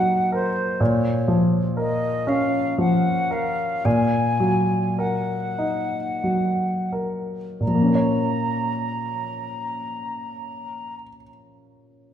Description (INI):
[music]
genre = classical, romantic movement for piano and orchestra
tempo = 41-64 BPM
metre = 3/4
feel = rubato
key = Bb minor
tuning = A4 = 440 Hz
[part]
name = warm grand piano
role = melody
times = 0.0-12.1 s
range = Bb2 to Db5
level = -22 LUFS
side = equal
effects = none
[part]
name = mellow concert flute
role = second line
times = 0.0-10.9 s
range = C5 to Bb5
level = -26 LUFS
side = equal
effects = none
[sound]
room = wet scoring stage reverb, RT60 1.7 s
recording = minimal, uncompressed stereo recording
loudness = -20 LUFS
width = side -9 dB against mid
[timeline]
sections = 0.0-7.6 A section; 7.6-11.5 B section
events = slowing down 0.0-7.6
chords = 0.0 Ebm/Bb; 0.8 Bbm; 3.8 Ebm/Bb; 7.6 Bbm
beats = | 0.80 1.76 2.78 | 3.85 4.99 6.23 | 7.61 8.90 10.21